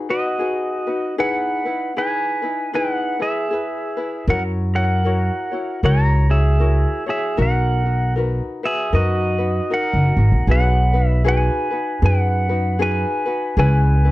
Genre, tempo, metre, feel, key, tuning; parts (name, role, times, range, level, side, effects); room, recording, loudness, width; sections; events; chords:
Hawaiian; 77 BPM; 4/4; swing 60% on 8ths; B major; A4 = 440 Hz
ukulele; accompaniment; 0.0-14.1 s; C#4 to C#5; -25 LUFS; left 3 dB
pedal steel guitar; melody; 0.1-14.1 s; F#4 to A#5; -22 LUFS; right 1 dB; slapback echo
upright bass; bass; 4.3-14.1 s; F#1 to F#2; -16 LUFS; equal
little or no reverb; dry, close 1970s-style studio recording; -17 LUFS; side -17 dB against mid
0.0-10.5 A section; 10.5-14.1 B section
0.0 B6; 1.2 Emaj7; 4.3 F#7; 7.4 Bmaj7; 10.5 B6; 13.6 C#m7